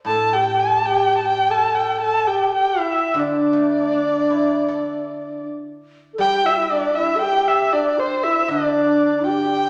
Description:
chinese traditional, Chinese chamber ensemble; 78 BPM; 4/4; rubato; G zhi mode; A4 = 440 Hz
guzheng; accompaniment; 0.0-9.7 s; A2 to A4; -26 LUFS; equal
dark erhu; melody; 0.1-9.7 s; C5 to A5; -21 LUFS; equal
bright reedy low xiao; second line; 0.1-9.7 s; D4 to C5; -26 LUFS; equal
wet recital hall reverb, RT60 1.7 s; -19 LUFS; mono
0.0-9.7 A section

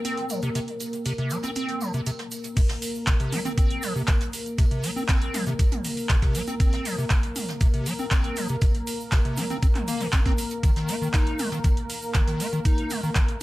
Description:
acid house; 119 BPM; 4/4; straight; C minor; A4 = 440 Hz
dark analog pad; sustained chords; 0.0-13.4 s; Bb3 to Bb4; -32 LUFS; left 1 dB; chorus, sidechain pumping
acid bass, square; riff; 0.0-13.2 s; C3 to Eb4; -29 LUFS; equal; overdrive, ensemble chorus, sidechain pumping, analog delay
electro analog drum machine; drums; 0.0-13.4 s; crash cymbal, handclaps, hi-hat, toms; -32 LUFS; right 1 dB; overdrive
egg shaker; percussion; 0.0-13.3 s; -42 LUFS; right 2 dB
jazz brush drum kit; drums; 0.1-13.4 s; hi-hat, snare drum, tambourine; -39 LUFS; right 2 dB; high-pass filter on hats, low-pass filter on hats, high-pass filter on snare, low-pass filter on snare, high-pass filter on perc, low-pass filter on perc, high-pass filter on room, low-pass filter on room
electronic kick drum; drums; 2.6-13.3 s; -21 LUFS; equal
light reverb; -22 LUFS; side -18 dB against mid
0.0-2.6 A section; 2.6-13.4 B section
drop 2.6-13.4
0.0 C5; 2.6 C7(no3); 10.6 Eb5

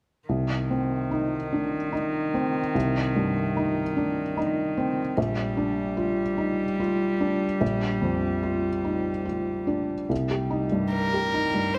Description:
neoclassical piano and strings; 73 BPM; 3/4; rubato; C minor; A4 = 438 Hz
rich cello; second line; 0.3-11.8 s; Eb3 to G3; -32 LUFS; equal
felt-muted upright piano; accompaniment; 0.3-11.8 s; Bb1 to G4; -28 LUFS; equal
warm violin; melody; 10.9-11.8 s; Bb4 to C5; -27 LUFS; equal
light reverb; close, detailed microphones; -26 LUFS; mono
0.3-10.1 A section; 10.1-11.8 B section
0.3 Cm; 5.2 Bb6; 10.1 Cm

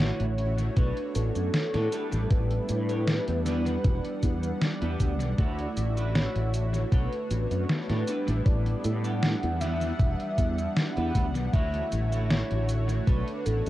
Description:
vaporwave; 78 BPM; 4/4; straight; D major; A4 = 439 Hz
warm velvety synth lead; melody; 0.0-13.7 s; A4 to F#5; -34 LUFS; equal; chorus, analog delay
mellow synth brass; accompaniment; 0.0-13.7 s; G3 to F#5; -34 LUFS; right 1 dB; wide subtle chorus, analog delay
soft string machine; sustained chords; 0.0-13.7 s; D3 to E5; -40 LUFS; equal
clean electric guitar; riff; 0.0-13.5 s; D4 to D5; -42 LUFS; right 2 dB; lush chorus, analog delay
fretless electric bass; bass; 0.0-13.7 s; E1 to A2; -28 LUFS; equal; ensemble chorus
detuned 8-bit digital drum machine; drums; 0.0-13.7 s; cabasa, hi-hat, snare drum; -30 LUFS; equal; analog delay
electronic kick drum; drums; 0.8-13.2 s; -25 LUFS; equal
light reverb; echo-heavy mix, cassette tape; -25 LUFS; side -15 dB against mid
0.0-13.7 A section
0.0 Dmaj9; 1.9 A9sus4; 3.5 Em7; 5.4 Dmaj9; 6.9 Bm9; 8.1 A9sus4; 9.6 Em7; 11.5 Dmaj9; 13.1 Bm9

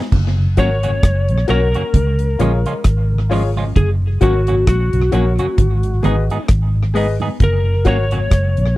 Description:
roots reggae; 66 BPM; 4/4; swing 57% on 16ths; F# major; A4 = 440 Hz
vintage muted fingered electric bass; bass; 0.1-8.8 s; F#1 to C#2; -16 LUFS; equal
deep reggae drum kit; drums; 0.1-8.8 s; crash cymbal, hi-hat, kick drum, rim click; -15 LUFS; equal; tape echo
congas; percussion; 0.1-8.6 s; -26 LUFS; right 6 dB
mellow tonewheel organ; accompaniment; 0.4-8.7 s; F#2 to D#4; -26 LUFS; left 2 dB; slow rotary speaker, tape echo
lightly driven lead guitar; melody; 0.6-8.7 s; F#4 to C#5; -21 LUFS; left 2 dB; tape echo
clean electric guitar; accompaniment; 0.6-8.2 s; E#3 to G#4; -25 LUFS; right 4 dB; warbly pitch drift, tape echo
warm upright piano; stabs; 0.6-8.0 s; E#4 to D#5; -22 LUFS; left 5 dB
little or no reverb; dry, close 1970s-style studio recording; -13 LUFS; side -17 dB against mid
0.1-8.8 A section
0.1 F#; 1.9 C#; 3.8 F#; 5.6 G#m; 7.4 F#

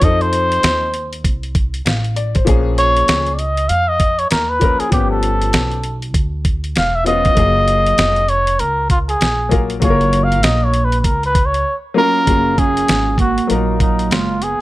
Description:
hip hop, jazz-hop; 98 BPM; 4/4; swing 61% on 16ths; F# major; A4 = 440 Hz
trumpet with cup mute; melody; 0.0-14.6 s; D#4 to E#5; -16 LUFS; equal
warm baby grand piano; accompaniment; 0.0-14.3 s; F3 to F5; -21 LUFS; left 5 dB
upright bass; bass; 0.0-14.6 s; E1 to F2; -20 LUFS; equal
dusty soul sampler-style drum kit; drums; 0.0-14.6 s; hi-hat, kick drum, snare drum; -18 LUFS; equal
mellow electric guitar; second line; 12.0-14.6 s; F#3 to C#4; -20 LUFS; right 7 dB
small room ambience; -13 LUFS; side -17 dB against mid
0.0-12.3 A section; 12.3-14.6 B section
muted trumpet solo 0.0-12.3; silent gap 11.7-12.3
0.0 F7; 2.5 A#m7; 4.9 G7#11; 7.4 F#maj9

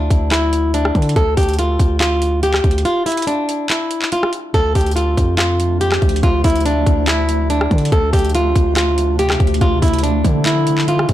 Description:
hip hop, trap; 142 BPM; 4/4; half-time; D minor; A4 = 441 Hz
flamenco guitar; melody; 0.0-11.1 s; D4 to A4; -18 LUFS; equal; low-pass filter, ping-pong delay
long sustained 808-style bass; bass; 0.0-11.1 s; C2 to D3; -18 LUFS; equal
trap drum kit; drums; 0.1-11.1 s; handclaps, hi-hat, kick drum, rim click; -18 LUFS; equal
granular cloud pad; sustained chords; 5.3-11.1 s; C3 to D4; -25 LUFS; right 1 dB; built-in reverb
little or no reverb; blown-out, overdriven recording, overdrive; -13 LUFS; side -13 dB against mid
0.0-11.1 A section
break 2.9-4.5
0.0 Dm; 4.5 Dm7

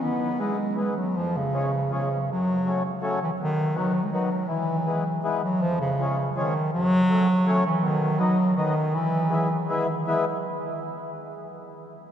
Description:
alpine folk, alpine dance band; 162 BPM; 3/4; straight; E major; A4 = 437 Hz
mellow bass clarinet; melody; 0.0-9.7 s; C#3 to B3; -24 LUFS; equal
mellow accordion; accompaniment; 0.0-10.2 s; E#2 to E4; -28 LUFS; left 2 dB
wet cathedral reverb, RT60 6.7 s; recorded in a church or concert hall; -22 LUFS; side -9 dB against mid
0.0-5.6 A section; 5.6-10.1 B section; 10.1-11.2 C section
0.0 E; 1.2 C#/E#; 2.3 F#m; 3.4 B; 4.5 E; 5.6 C#/E#; 6.7 F#m; 7.8 B; 8.9 E

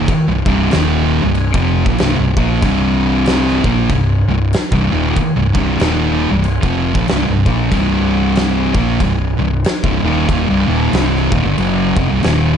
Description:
stoner and doom metal; 94 BPM; 4/4; swing 60% on 8ths; C minor; A4 = 440 Hz
thick fuzz guitar; riff; 0.0-12.6 s; C2 to Bb3; -18 LUFS; left 10 dB; distortion
thick fuzz guitar; riff; 0.0-12.6 s; C2 to Bb3; -17 LUFS; right 9 dB; distortion
hollow-body short-scale fingered electric bass; bass; 0.0-12.6 s; C1 to Bb1; -19 LUFS; equal; tube saturation
oversized low-tuned drum kit; drums; 0.1-12.4 s; crash cymbal, kick drum, snare drum; -19 LUFS; equal
light reverb; nothing above 10.7 kHz; -12 LUFS; side -8 dB against mid
0.0-12.6 A section
0.0 Cm

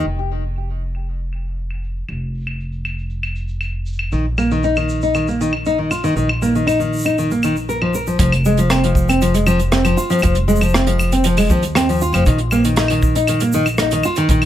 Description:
folktronica; 118 BPM; 4/4; straight; F minor; A4 = 440 Hz
nylon-string guitar; arpeggios; 0.0, 4.1-14.4 s; Eb3 to Bb4; -17 LUFS; equal; ping-pong delay
upright bass; bass; 0.0-14.5 s; F1 to Eb2; -20 LUFS; equal; tube saturation
vintage brush drum kit; drums; 0.1-14.5 s; claves, hi-hat, rim click, shaker; -22 LUFS; right 1 dB; low-pass filter on hats, low-pass filter on snare, low-pass filter on perc, low-pass filter on room
kick drum; drums; 8.2-14.4 s; -18 LUFS; equal
light reverb; -15 LUFS; side -11 dB against mid
0.1-8.2 A section; 8.2-14.5 B section
0.1 N.C.; 4.1 Bbsus4; 8.2 F5; 12.3 Bbsus4

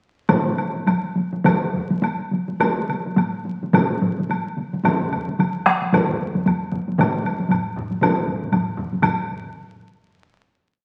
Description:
japanese traditional, taiko drum ensemble; 103-129 BPM; 4/4; swing 60% on 16ths
taiko ensemble; percussion; 0.3-9.3 s; -25 LUFS; equal
taiko ensemble; percussion; 0.3-9.3 s; -25 LUFS; equal
woodblock; percussion; 0.3-9.3 s; -28 LUFS; equal
taiko ensemble; percussion; 0.9-9.5 s; -28 LUFS; equal
taiko ensemble; percussion; 3.2-9.5 s; -34 LUFS; equal
wet large studio reverb, RT60 1.2 s; very old 78 rpm record, vinyl crackle; -21 LUFS; mono
0.3-9.0 A section; 9.0-10.8 final hit
speeding up 0.3-10.8

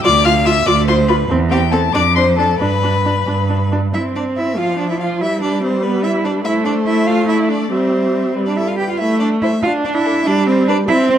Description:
quick classical-period movement for string quartet; 95 BPM (dotted quarters); 6/8; rubato; A4 = 440 Hz
rich violin; melody; 0.0-10.8 s; A4 to F6; -22 LUFS; left 10 dB
clear violin; second line; 0.0-11.1 s; G4 to G5; -21 LUFS; left 2 dB
rich viola; accompaniment; 0.0-11.2 s; F3 to F4; -18 LUFS; equal
clear cello; bass; 0.0-11.2 s; D2 to G4; -17 LUFS; right 3 dB
moderate scoring stage reverb, RT60 1.9 s; dark, warm production; -13 LUFS; side -10 dB against mid
0.0-3.9 A section; 3.9-11.2 B section
0.1 Dm13; 1.3 C/E; 1.9 Dm/F; 2.6 G; 3.9 C; 4.6 Dm/F; 5.2 G; 6.5 Am; 7.7 C/G; 8.4 G; 9.0 A5; 9.6 N.C.; 10.3 G5

